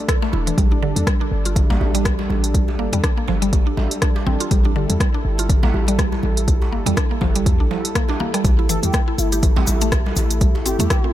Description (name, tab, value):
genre	afro house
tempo	122 BPM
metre	4/4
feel	swing 57% on 16ths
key	unclear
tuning	A4 = 440 Hz
part	warm analog pad	sustained chords	0.0-11.1 s	G3 to A4	-28 LUFS	left 1 dB	chorus, sidechain pumping
part	mallet-like synth pluck	arpeggios	0.1-11.1 s	D3 to A4	-25 LUFS	right 1 dB	chorus, sidechain pumping, tape echo
part	deep house drum kit	drums	0.1-11.0 s	hi-hat, rim click	-26 LUFS	equal	none
part	electronic kick drum	drums	0.1-11.0 s	none	-18 LUFS	equal	overdrive
part	djembe	percussion	0.2-10.6 s	none	-29 LUFS	right 2 dB	none
part	warm 808-style bass	bass	0.3-10.9 s	E1 to E2	-21 LUFS	equal	sidechain pumping
part	congas	percussion	0.3-11.0 s	none	-29 LUFS	left 1 dB	none
part	cabasa	percussion	8.4-11.0 s	none	-30 LUFS	left 6 dB	none
part	expressive portamento lead	melody	8.7-11.1 s	E4 to A4	-27 LUFS	equal	analog chorus, tape echo
room	digital ambience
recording	none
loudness	-16 LUFS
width	side -13 dB against mid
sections	0.0-11.1 A section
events	none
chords	0.0 A5; 0.6 G5; 8.4 A7(no3)